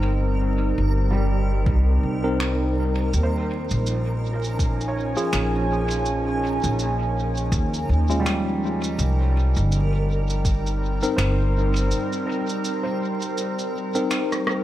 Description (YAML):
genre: ambient dub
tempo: 82 BPM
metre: 4/4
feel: swing 58% on 16ths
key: unclear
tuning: A4 = 435 Hz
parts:
  - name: warbly tape-like pad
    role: sustained chords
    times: 0.0-14.6 s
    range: F3 to Ab5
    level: -27 LUFS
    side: right 1 dB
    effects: chorus, built-in reverb
  - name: tine electric piano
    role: stabs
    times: 0.0-14.6 s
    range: Ab3 to Bb4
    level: -28 LUFS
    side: left 2 dB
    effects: overdrive, fast stereo tremolo, dub echo
  - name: upright bass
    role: bass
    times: 0.0-11.9 s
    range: G1 to Eb2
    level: -22 LUFS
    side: equal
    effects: none
  - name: backwards swelling texture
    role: texture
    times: 0.0-14.6 s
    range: Bb4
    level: -37 LUFS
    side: right 1 dB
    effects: built-in reverb
  - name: felt-muted upright piano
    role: arpeggios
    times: 1.1-14.6 s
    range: G3 to Db5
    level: -33 LUFS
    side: right 3 dB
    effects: dub echo
  - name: electronic kick drum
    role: drums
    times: 1.7-10.6 s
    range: none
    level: -23 LUFS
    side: equal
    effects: none
  - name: electronic finger snaps, shaker and rim click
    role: drums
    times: 2.4-14.6 s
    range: none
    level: -31 LUFS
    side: equal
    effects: dub echo
room: light reverb, digital ambience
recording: vinyl crackle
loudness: -20 LUFS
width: side -13 dB against mid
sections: 0.0-14.6 A section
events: break 11.9-14.6; drum fill 14.3-14.6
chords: 0.0 Cm7; 3.1 Eb9sus4; 9.0 Cm7